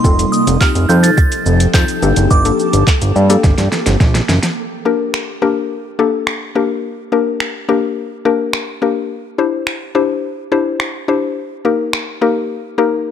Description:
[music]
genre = dance-pop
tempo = 106 BPM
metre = 4/4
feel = straight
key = G minor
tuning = A4 = 440 Hz
[part]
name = glassy synth bell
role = melody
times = 0.0-3.1 s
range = C6 to A6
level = -20 LUFS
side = right 3 dB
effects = chorus, dub echo
[part]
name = mallet-like synth pluck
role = accompaniment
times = 0.0-13.1 s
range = Bb3 to C5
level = -16 LUFS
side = left 5 dB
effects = chorus, sidechain pumping
[part]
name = ethereal airy pad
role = sustained chords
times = 0.0-4.5 s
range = F3 to A4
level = -20 LUFS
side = left 1 dB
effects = ensemble chorus, built-in reverb, phaser, sidechain pumping
[part]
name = fat analog bass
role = bass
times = 0.0-4.4 s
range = F1 to G2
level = -13 LUFS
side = right 1 dB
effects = sidechain pumping
[part]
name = smooth R&B drum kit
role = drums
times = 0.0-12.1 s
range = finger snaps, handclaps, hi-hat, kick drum, shaker, snare drum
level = -16 LUFS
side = right 1 dB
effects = none
[sound]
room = light reverb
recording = none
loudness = -13 LUFS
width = side -9 dB against mid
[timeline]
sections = 0.0-4.6 A section; 4.6-13.1 B section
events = drum fill 3.4-4.6; drums muted 12.5-13.1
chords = 0.0 F7; 2.0 Gmadd9; 4.6 Gm; 9.1 Cadd9; 11.4 Eb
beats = | 0.04 0.61 1.18 1.74 | 2.31 2.88 3.44 4.01 | 4.57 5.14 5.71 6.27 | 6.84 7.40 7.97 8.54 | 9.10 9.67 10.23 10.80 | 11.37 11.93 12.50 13.06

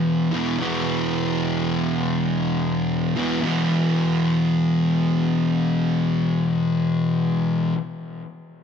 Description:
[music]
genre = metal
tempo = 84 BPM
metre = 4/4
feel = swing 63% on 8ths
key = unclear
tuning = A4 = 440 Hz
[part]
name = fuzz guitar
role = solo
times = 0.0-7.8 s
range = E2 to E3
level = -20 LUFS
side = equal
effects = distortion, analog delay
[sound]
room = light reverb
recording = none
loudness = -19 LUFS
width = side -7 dB against mid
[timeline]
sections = 0.0-3.4 A section; 3.4-6.3 B section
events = none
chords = 0.0 E5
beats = | 0.58 1.30 2.01 2.73 | 3.44 4.15 4.87 5.58

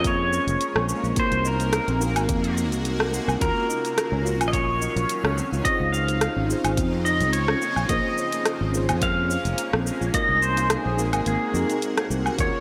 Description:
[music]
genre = sunset chillout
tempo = 107 BPM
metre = 4/4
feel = swing 55% on 16ths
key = unclear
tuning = A4 = 439 Hz
[part]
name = pedal steel guitar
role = melody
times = 0.0-12.6 s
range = Ab4 to F5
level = -28 LUFS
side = equal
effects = lush chorus, delay
[part]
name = mellow tine electric piano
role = accompaniment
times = 0.0-12.6 s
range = C4 to Db5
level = -32 LUFS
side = equal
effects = none
[part]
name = shimmering ambient pad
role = sustained chords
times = 0.2-12.6 s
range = C3 to F5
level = -35 LUFS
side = equal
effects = chorus, built-in reverb, phaser
[part]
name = soft round pluck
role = arpeggios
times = 0.0-12.5 s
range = Bb3 to Bb4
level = -34 LUFS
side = equal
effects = analog chorus, delay
[part]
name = fretless electric bass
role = bass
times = 0.0-12.5 s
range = F1 to F2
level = -29 LUFS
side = equal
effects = none
[part]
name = deep house drum kit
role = drums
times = 0.0-12.5 s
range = cabasa, hi-hat, rim click, woodblock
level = -30 LUFS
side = equal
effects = overdrive
[part]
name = electronic kick drum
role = drums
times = 0.0-12.5 s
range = none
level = -30 LUFS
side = equal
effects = overdrive
[sound]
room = wet lush hall reverb, RT60 1.9 s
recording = bright 1980s-style digital production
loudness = -23 LUFS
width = mono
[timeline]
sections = 0.0-12.6 A section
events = break 11.3-12.4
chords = 0.0 Bbm9; 1.2 Ab9; 3.4 Ebm9; 5.4 Dbmaj9; 7.6 Bbm9; 10.1 Ab9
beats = 0.05 0.61 | 1.17 1.73 2.29 2.85 | 3.41 3.97 4.53 5.09 | 5.65 6.21 6.78 7.34 | 7.90 8.46 9.02 9.58 | 10.14 10.70 11.26 11.82 | 12.38

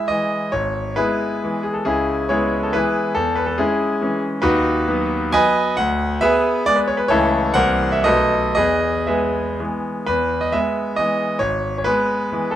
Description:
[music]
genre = classical, romantic triple-time dance for piano with dotted rhythms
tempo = 110-147 BPM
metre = 3/4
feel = rubato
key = E major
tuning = A4 = 439 Hz
[part]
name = bright concert grand piano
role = solo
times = 0.0-12.6 s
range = G#1 to G#5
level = -17 LUFS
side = equal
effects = none
[sound]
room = light reverb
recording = close, detailed microphones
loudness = -17 LUFS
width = side -11 dB against mid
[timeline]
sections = 0.0-10.1 A section; 10.1-12.6 B section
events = none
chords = 0.0 E; 0.5 E/G#; 1.9 C#m7; 3.2 C#m/E; 4.4 B/D#; 5.8 E7/D; 7.1 A/C#; 7.5 C7; 8.1 B7; 8.6 E; 11.4 E/G#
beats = 0.09 | 0.52 0.96 1.43 | 1.85 2.30 2.74 | 3.16 3.58 4.02 | 4.43 4.87 5.33 | 5.77 6.21 6.66 | 7.09 7.54 8.05 | 8.56 9.08 9.60 | 10.08 10.54 10.99 | 11.41 11.86 12.32

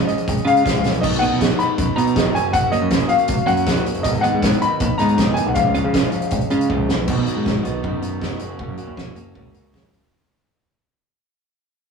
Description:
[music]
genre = indie rock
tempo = 159 BPM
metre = 4/4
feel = straight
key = F# major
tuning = A4 = 440 Hz
[part]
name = clear upright piano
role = melody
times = 0.0-6.6 s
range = D#5 to B5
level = -21 LUFS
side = left 3 dB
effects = none
[part]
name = clean electric guitar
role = riff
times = 0.0-10.1 s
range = F#2 to E#4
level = -26 LUFS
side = right 5 dB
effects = none
[part]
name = electric guitar through a small old amp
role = riff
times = 0.0-10.1 s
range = D#3 to F#4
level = -25 LUFS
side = left 2 dB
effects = none
[part]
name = loose indie drum kit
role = drums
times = 0.0-10.0 s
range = crash cymbal, hi-hat, kick drum, snare drum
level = -22 LUFS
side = right 1 dB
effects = none
[part]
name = growling picked electric bass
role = bass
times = 0.3-10.0 s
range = E#1 to C#3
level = -22 LUFS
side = right 1 dB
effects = overdrive
[sound]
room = moderate small room reverb, RT60 0.5 s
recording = rough rehearsal-room recording, tube saturation, small room ambience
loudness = -16 LUFS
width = side -5 dB against mid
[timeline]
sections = 0.0-7.1 A section; 7.1-10.1 B section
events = drum fill 6.7-7.1; fade-out 7.1-10.1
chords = 0.0 C#; 1.0 B; 2.3 F#; 4.0 G#m; 5.6 C#; 7.1 B; 8.4 F#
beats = 0.27 0.65 | 1.03 1.40 1.78 2.16 | 2.54 2.91 3.29 3.67 | 4.04 4.42 4.80 5.18 | 5.55 5.93 6.31 6.69 | 7.07 7.45 7.83 8.21 | 8.59 8.97 9.35 9.73

